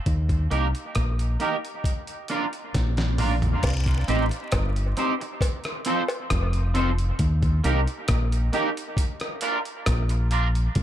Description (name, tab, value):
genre	dub reggae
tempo	67 BPM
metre	4/4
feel	straight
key	unclear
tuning	A4 = 438 Hz
part	deep dub fingered electric bass	bass	0.1-10.8 s	F1 to Eb2	-23 LUFS	equal	none
part	dusty soul sampler-style drum kit	drums	0.1-10.8 s	crash cymbal, hi-hat, kick drum, rim click, snare drum, toms	-27 LUFS	equal	none
part	electric guitar at the edge of break-up	accompaniment	0.5-10.5 s	Bb3 to C5	-28 LUFS	right 2 dB	analog chorus, high-pass filter, low-pass filter, dub echo
part	cowbell and jawbone-type rattle	percussion	3.6-6.3 s	none	-35 LUFS	left 1 dB	dub echo
room	digital ambience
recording	echo-heavy mix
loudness	-22 LUFS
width	side -12 dB against mid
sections	0.0-3.6 A section; 3.6-10.8 B section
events	drum fill 2.7-3.6; part muted 7.2-10.8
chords	0.1 Eb; 1.8 Bb; 3.6 Cm; 5.4 F; 7.2 Eb; 9.0 Bb